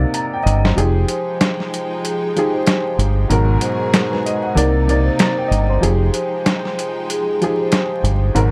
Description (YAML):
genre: hip hop, boom-bap hip-hop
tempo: 95 BPM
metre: 4/4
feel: swing 58% on 16ths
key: F minor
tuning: A4 = 440 Hz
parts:
  - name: warm upright piano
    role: accompaniment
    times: 0.0-8.5 s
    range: Ab2 to Bb5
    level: -23 LUFS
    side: equal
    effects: none
  - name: deep dub fingered electric bass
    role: bass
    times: 0.0-8.5 s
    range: F1 to C2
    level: -18 LUFS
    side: equal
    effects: none
  - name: boom bap sampler-style drum kit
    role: drums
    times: 0.1-8.5 s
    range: hi-hat, snare drum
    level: -21 LUFS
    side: equal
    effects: none
  - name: rich studio string section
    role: sustained chords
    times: 0.8-8.5 s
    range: C3 to G5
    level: -30 LUFS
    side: equal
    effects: none
  - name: vibraphone with medium mallets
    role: melody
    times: 1.1-8.0 s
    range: Ab4 to C5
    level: -26 LUFS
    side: equal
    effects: none
room: light reverb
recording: vinyl crackle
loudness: -18 LUFS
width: mono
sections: 0.8-8.5 A section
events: drum fill 0.1-0.8; kick muted 0.8-8.5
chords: 0.0 Cm9; 0.8 Fm9; 3.3 Abm9; 4.6 Cm9; 5.8 Fm9